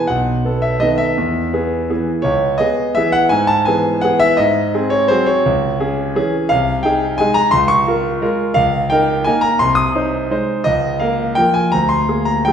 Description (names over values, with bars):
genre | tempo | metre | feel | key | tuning
classical, piano waltz | 152-183 BPM | 3/4 | rubato | Ab major from 6.5 s | A4 = 440 Hz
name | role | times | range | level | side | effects
clear concert grand piano | solo | 0.0-12.5 s | B1 to Eb6 | -14 LUFS | equal | none
room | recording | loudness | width
wet recital hall reverb, RT60 1.3 s | recorded in a church or concert hall | -14 LUFS | side -8 dB against mid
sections
0.0-12.5 A section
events
none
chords
0.1 B7; 1.2 E; 2.2 C#m7; 4.4 G#7; 5.5 C#m; 6.5 Ab/C; 7.5 Bbm7/Db; 8.6 Eb7/Db; 9.6 Ab/C; 10.7 Bbm/Db; 11.7 Bb7/D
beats
| 0.09 0.45 0.81 | 1.17 1.53 1.90 | 2.25 2.60 2.97 | 3.32 3.67 4.04 | 4.39 4.75 5.11 | 5.46 5.80 6.16 | 6.51 6.85 7.20 | 7.53 7.87 8.21 | 8.57 8.91 9.27 | 9.61 9.95 10.31 | 10.66 11.01 11.38 | 11.74 12.09 12.47